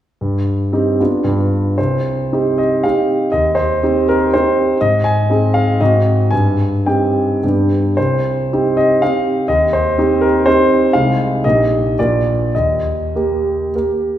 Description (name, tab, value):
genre	classical, romantic triple-time dance for piano with dotted rhythms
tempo	96-132 BPM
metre	3/4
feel	rubato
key	C minor, Eb major from 10.9 s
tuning	A4 = 444 Hz
part	warm concert grand piano	solo	0.2-14.2 s	Bb1 to Ab5	-13 LUFS	equal	none
room	wet recital hall reverb, RT60 1.6 s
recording	heard from further back in the room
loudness	-13 LUFS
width	side -11 dB against mid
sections	0.2-1.8 A section; 1.8-14.2 B section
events	none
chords	0.2 Cm/G; 1.0 G7; 1.8 Cm; 3.3 Cm/Eb; 4.8 Ab; 5.8 Ab7; 6.3 Cm/G; 7.4 G; 8.0 Cm; 9.5 Cm/Eb; 10.9 Ab/C; 11.4 Eb/Bb; 12.0 Bb; 12.5 Eb